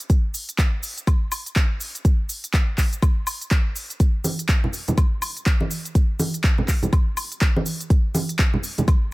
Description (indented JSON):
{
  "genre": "house",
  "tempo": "123 BPM",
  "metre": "4/4",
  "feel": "swing 60% on 16ths",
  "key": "none",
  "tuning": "none",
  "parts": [
    { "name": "deep house drum kit", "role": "drums", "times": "0.0-9.0 s", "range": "handclaps, hi-hat, shaker, woodblock", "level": "-27 LUFS", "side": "equal", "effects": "none" },
    { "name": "electronic kick drum", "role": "drums", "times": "0.1-9.0 s", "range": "none", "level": "-18 LUFS", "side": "equal", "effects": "none" },
    { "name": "congas", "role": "percussion", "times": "4.2-8.9 s", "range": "none", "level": "-25 LUFS", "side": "right 1 dB", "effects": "none" }
  ],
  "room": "little or no reverb",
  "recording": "none",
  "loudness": "-19 LUFS",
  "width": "side -21 dB against mid",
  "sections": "0.0-9.1 A section",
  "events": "none",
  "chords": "none",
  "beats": "| 0.10 0.58 1.07 1.56 | 2.05 2.54 3.02 3.51 | 4.00 4.49 4.98 5.46 | 5.95 6.44 6.93 7.42 | 7.90 8.39 8.88"
}